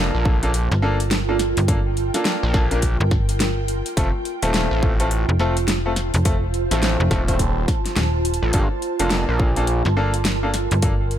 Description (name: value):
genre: glitch hop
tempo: 105 BPM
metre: 4/4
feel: swing 61% on 16ths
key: G minor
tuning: A4 = 440 Hz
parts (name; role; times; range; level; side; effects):
- bright grand piano; stabs; 0.0-10.9 s; A3 to C5; -26 LUFS; left 2 dB; vintage 12-bit sampler grit, sidechain pumping, ping-pong delay
- gritty driven synth bass; bass; 0.0-9.8 s; Eb1 to Bb1; -21 LUFS; equal; none
- ethereal airy pad; texture; 0.0-11.2 s; F4 to A5; -27 LUFS; right 3 dB; ensemble chorus, built-in reverb, phaser, sidechain pumping
- electronic kick drum; drums; 0.3-11.0 s; none; -21 LUFS; equal; none
- dubstep drum kit; drums; 0.4-11.2 s; hi-hat, snare drum; -25 LUFS; equal; none
- slap-like FM bass; bass; 0.7-11.2 s; Eb1 to G1; -21 LUFS; equal; none
room: little or no reverb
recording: none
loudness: -18 LUFS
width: side -10 dB against mid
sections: 0.0-11.2 A section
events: none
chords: 0.0 Gm7; 4.0 F; 8.5 Gm7